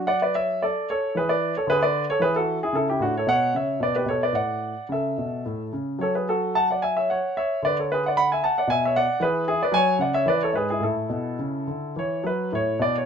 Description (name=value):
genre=classical, baroque-style suite movement for grand piano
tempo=103-115 BPM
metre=3/4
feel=rubato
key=A major from 6.0 s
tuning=A4 = 440 Hz
part: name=warm grand piano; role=solo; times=0.0-13.1 s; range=G#2 to B5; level=-21 LUFS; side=equal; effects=none
room=light reverb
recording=close, detailed microphones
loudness=-21 LUFS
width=side -7 dB against mid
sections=0.0-12.5 A section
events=none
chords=0.0 D/F#; 1.1 E7; 2.7 A; 3.8 Bm9; 4.3 Asus4; 5.4 A; 6.0 F#m; 7.6 Bm7/D; 9.2 E; 9.7 F#5; 10.3 E; 10.8 A